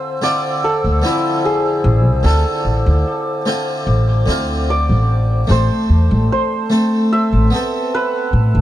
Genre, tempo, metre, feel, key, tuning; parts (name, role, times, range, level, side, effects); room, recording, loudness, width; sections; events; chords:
trip hop; 74 BPM; 4/4; straight; A4 = 441 Hz
santur; melody; 0.0-8.6 s; E4 to E5; -20 LUFS; equal; vintage 12-bit sampler grit, tape echo
harpsichord; accompaniment; 0.0-8.6 s; D3 to A4; -20 LUFS; equal; tremolo
warbly tape-like pad; sustained chords; 0.0-8.6 s; A4 to E6; -25 LUFS; left 1 dB; chorus, built-in reverb
upright bass; bass; 0.8-8.6 s; E1 to A2; -14 LUFS; equal
studio ambience; dark, warm production; -14 LUFS; side -13 dB against mid
0.0-8.6 A section
0.0 Dm9; 5.5 Amadd9